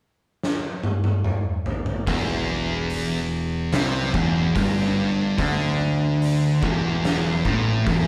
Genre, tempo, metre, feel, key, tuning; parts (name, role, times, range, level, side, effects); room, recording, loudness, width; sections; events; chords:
stoner and doom metal; 72 BPM; 4/4; straight; E minor; A4 = 442 Hz
oversized low-tuned drum kit; drums; 0.4-8.1 s; hi-hat, kick drum, snare drum, toms; -28 LUFS; equal
thick fuzz guitar; riff; 2.1-8.1 s; E2 to D3; -26 LUFS; equal; distortion
thick fuzz guitar; riff; 2.1-8.1 s; E2 to D3; -28 LUFS; equal; distortion
overdriven picked electric bass; bass; 2.1-8.1 s; E1 to D2; -32 LUFS; equal; tube saturation
moderate large studio reverb, RT60 1.2 s; band playing live in one room; -23 LUFS; mono
0.0-2.1 A section; 2.1-8.1 B section
drum fill 0.4-2.1
0.0 N.C.; 2.1 Em